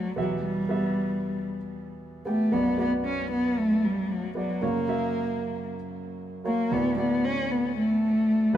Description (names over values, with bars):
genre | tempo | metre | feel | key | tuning
pop | 115 BPM | 4/4 | straight | unclear | A4 = 438 Hz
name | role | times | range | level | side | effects
dark cello | melody | 0.0-8.6 s | F#3 to C#4 | -25 LUFS | left 1 dB | ping-pong delay
warm concert grand piano | accompaniment | 0.0-8.6 s | B1 to G5 | -31 LUFS | right 2 dB | none
room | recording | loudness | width
wet stone room reverb, RT60 1.1 s | band playing live in one room | -24 LUFS | side -11 dB against mid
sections
0.0-8.6 A section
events
none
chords
0.2 Em; 2.5 Bm; 4.6 F#; 6.7 D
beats
| 0.43 0.96 1.48 2.00 | 2.53 3.05 3.57 4.10 | 4.62 5.14 5.67 6.19 | 6.71 7.24 7.76 8.28